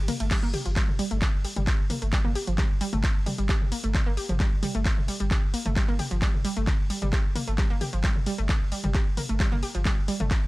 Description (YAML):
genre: driving peak-time techno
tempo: 132 BPM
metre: 4/4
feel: straight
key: G minor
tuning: A4 = 444 Hz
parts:
  - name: warm sub bass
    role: bass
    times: 0.0-10.5 s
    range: G1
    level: -28 LUFS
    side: equal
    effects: overdrive, sidechain pumping, low-pass filter
  - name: analog pluck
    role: riff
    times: 0.1-10.2 s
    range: F3 to G4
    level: -32 LUFS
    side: right 1 dB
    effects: chorus, sidechain pumping, tape echo
  - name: punchy analog drum machine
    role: drums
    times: 0.1-10.4 s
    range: crash cymbal, handclaps, hi-hat, ride cymbal, toms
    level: -32 LUFS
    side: equal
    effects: none
  - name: electronic kick drum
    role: drums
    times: 0.3-10.4 s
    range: none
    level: -25 LUFS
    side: equal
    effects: none
room: little or no reverb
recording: dry, gritty hardware recording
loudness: -23 LUFS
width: side -20 dB against mid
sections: 0.3-10.5 A section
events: break 0.0-0.3; drop 0.3-10.5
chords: none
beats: | 0.31 0.76 1.22 1.67 | 2.13 2.58 3.04 3.49 | 3.94 4.40 4.85 5.31 | 5.76 6.22 6.67 7.13 | 7.58 8.04 8.49 8.95 | 9.40 9.85 10.31